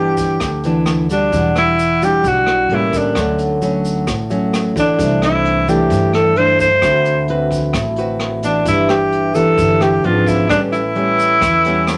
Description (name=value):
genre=bossa nova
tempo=131 BPM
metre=4/4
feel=straight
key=D major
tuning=A4 = 442 Hz
part: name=warm alto saxophone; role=melody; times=0.0-12.0 s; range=D4 to C5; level=-17 LUFS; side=equal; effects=none
part: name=nylon-string guitar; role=accompaniment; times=0.0-12.0 s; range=G2 to B4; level=-21 LUFS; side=equal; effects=none
part: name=upright bass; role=bass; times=0.0-12.0 s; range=E1 to G2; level=-26 LUFS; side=equal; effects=none
part: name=jazz brush drum kit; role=drums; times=0.2-12.0 s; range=hi-hat, kick drum, rim click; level=-28 LUFS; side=equal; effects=none
part: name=tube shaker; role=percussion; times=0.2-12.0 s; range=none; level=-38 LUFS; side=equal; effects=none
part: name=vibraphone with medium mallets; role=accompaniment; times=1.3-12.0 s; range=C4 to B5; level=-25 LUFS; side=equal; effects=none
room=wet studio reverb, RT60 0.6 s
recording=none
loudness=-15 LUFS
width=mono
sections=0.0-12.0 A section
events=none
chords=0.0 G6; 1.3 Em9; 2.7 A7b9; 3.2 Dmaj7; 5.0 C69; 6.8 D13; 8.7 G6; 10.0 G#dim7; 10.5 A9